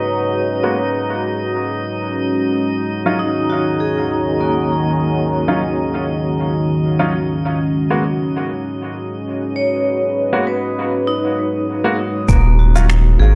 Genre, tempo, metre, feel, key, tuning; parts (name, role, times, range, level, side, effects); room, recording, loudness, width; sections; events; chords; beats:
ambient dub; 99 BPM; 4/4; swing 55% on 16ths; Eb minor; A4 = 441 Hz
deep dark ambient pad; sustained chords; 0.0-13.4 s; Eb3 to Bb5; -22 LUFS; equal; chorus, built-in reverb
vibraphone with medium hard mallets; arpeggios; 0.0-13.4 s; Bb3 to Db5; -24 LUFS; equal; low-pass filter, dub echo
drifting glass-harmonics texture; texture; 0.0-12.3 s; Eb4 to Eb5; -31 LUFS; equal; chorus, built-in reverb
clear upright piano; stabs; 0.6-12.9 s; Gb3 to Gb4; -25 LUFS; equal; low-pass filter, dub echo
round analog bass; bass; 12.3-13.4 s; Eb1 to Ab1; -13 LUFS; equal; tube saturation
electronic kick drum; drums; 12.3-12.4 s; -17 LUFS; equal
shaker and finger snaps; drums; 12.3-13.0 s; -28 LUFS; equal; low-pass filter on perc, low-pass filter on snare, low-pass filter on room, dub echo
moderate echo chamber reverb, RT60 1.4 s, small room ambience; -18 LUFS; mono
0.0-12.3 A section; 12.3-13.4 B section
filter sweep on vibraphone 0.0-12.3
0.0 Abm9; 2.6 Ebm7; 7.4 Abm7; 12.3 Ebm7
| 0.17 0.77 1.38 1.98 | 2.59 3.20 3.80 4.41 | 5.01 5.62 6.23 6.83 | 7.44 8.04 8.65 9.26 | 9.86 10.47 11.07 11.68 | 12.29 12.89